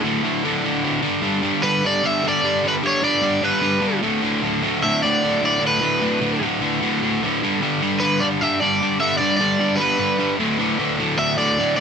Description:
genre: punk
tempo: 151 BPM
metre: 4/4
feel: straight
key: unclear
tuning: A4 = 440 Hz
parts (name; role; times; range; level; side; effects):
- overdriven semi-hollow guitar; melody; 0.0-11.8 s; B4 to E5; -22 LUFS; right 1 dB; ping-pong delay
- distorted electric guitar; riff; 0.0-11.8 s; D2 to G3; -19 LUFS; equal; distortion
room: light reverb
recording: none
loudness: -17 LUFS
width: side -6 dB against mid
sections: 0.0-11.8 A section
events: none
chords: 0.0 D5; 1.0 G; 4.0 D5; 7.4 G; 10.4 D5

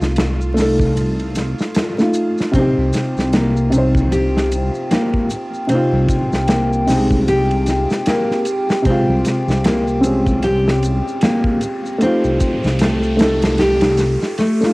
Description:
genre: trip hop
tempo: 76 BPM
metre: 4/4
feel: swing 59% on 16ths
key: unclear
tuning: A4 = 440 Hz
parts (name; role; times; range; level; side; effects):
- felt-muted upright piano; accompaniment; 0.0-14.7 s; C3 to C5; -19 LUFS; equal; harmonic tremolo, cassette tape, tape echo, plate reverb
- dark detuned saw bass; bass; 0.0-14.2 s; C2; -19 LUFS; equal; none
- gated 80s drum kit; drums; 0.0-14.7 s; hi-hat, kick drum, ride cymbal, snare drum; -20 LUFS; equal; cassette tape
- maracas; percussion; 0.0-14.7 s; none; -35 LUFS; left 2 dB; none
- bowed-like drone; texture; 0.0-14.7 s; F4; -34 LUFS; right 1 dB; none
- warbly tape-like pad; sustained chords; 3.1-14.7 s; G4 to G5; -24 LUFS; equal; chorus, built-in reverb, cassette tape, plate reverb
- nylon-string guitar; arpeggios; 2.5-14.7 s; A3 to G4; -20 LUFS; left 1 dB; cassette tape, analog delay, plate reverb
- riser; sound effects; 10.9-14.7 s; none; -35 LUFS; equal; none
room: light reverb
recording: home recording on cassette, vinyl crackle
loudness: -14 LUFS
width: side -22 dB against mid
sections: 0.0-14.7 A section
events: riser 10.9-14.7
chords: 0.0 F7/C; 2.5 Cm; 5.7 Ebsus2/C; 8.9 Bbm7/C; 12.0 F7/C

